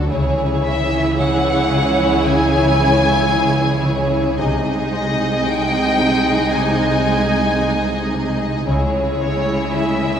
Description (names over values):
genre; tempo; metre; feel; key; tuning
cinematic; 56 BPM; 4/4; straight; unclear; A4 = 439 Hz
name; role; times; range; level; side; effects
warm symphonic violin section; second line; 0.0-10.2 s; G#4 to D#5; -23 LUFS; left 1 dB; none
warm symphonic viola section; accompaniment; 0.0-10.2 s; E3 to E4; -21 LUFS; right 2 dB; none
concert harp; riff; 0.0-10.2 s; B#2 to D4; -23 LUFS; left 2 dB; none
dark symphonic cello section; bass; 0.0-10.2 s; B#2 to D3; -23 LUFS; right 3 dB; none
rich symphonic double bass section; bass; 0.0-10.2 s; B#1 to D2; -25 LUFS; right 3 dB; none
sub bass with octave; drone; 0.0-10.2 s; B#1 to D2; -26 LUFS; left 1 dB; none
concert harp; texture; 0.0-2.3 s; D5 to F#5; -39 LUFS; left 6 dB; none
warm symphonic violin section; melody; 0.6-10.2 s; C#5 to G#5; -22 LUFS; left 2 dB; none
room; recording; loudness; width
wet recital hall reverb, RT60 1.6 s; recorded in a church or concert hall; -15 LUFS; side -8 dB against mid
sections
0.0-10.2 A section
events
none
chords
0.1 C#m; 4.4 G#/B#; 8.7 C#m